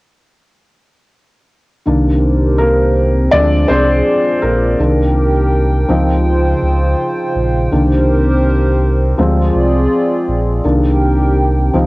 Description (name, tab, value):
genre	hip hop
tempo	82 BPM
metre	4/4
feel	swing 62% on 16ths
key	C minor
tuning	A4 = 439 Hz
part	felt-muted upright piano	accompaniment	1.9-11.9 s	Eb3 to D5	-15 LUFS	left 1 dB	cassette tape
part	hollow soft pad	sustained chords	1.9-11.9 s	Db3 to G5	-17 LUFS	equal	chorus, cassette tape
part	sub bass with octave	bass	1.9-11.9 s	Bb1 to D2	-14 LUFS	equal	none
room	light reverb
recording	home recording on cassette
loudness	-11 LUFS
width	side -21 dB against mid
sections	1.9-11.9 A section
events	felt piano solo 1.9-11.9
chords	1.9 Cm7; 3.3 Dm7b5; 4.8 Cm7; 5.9 Dbmaj9; 7.7 Cm7; 9.2 Dm7b5; 10.6 Cm7